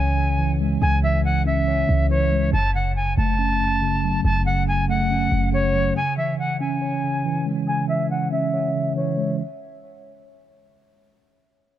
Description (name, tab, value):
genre	hip hop, trap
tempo	140 BPM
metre	4/4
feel	half-time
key	C# minor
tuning	A4 = 440 Hz
part	bright reedy jazz flute	melody	0.0-9.4 s	C#5 to A5	-24 LUFS	equal	low-pass filter, tape echo
part	mellow tine electric piano	accompaniment	0.0-9.4 s	F#2 to C#5	-23 LUFS	right 1 dB	medium stereo tremolo, low-pass filter
part	clean 808-style bass	bass	0.0-5.9 s	F#1 to C#2	-22 LUFS	equal	none
room	little or no reverb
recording	none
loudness	-19 LUFS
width	side -12 dB against mid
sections	0.0-6.0 A section; 6.0-9.4 B section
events	filter sweep 6.0-9.4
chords	0.0 C#m; 2.5 F#m; 6.0 C#m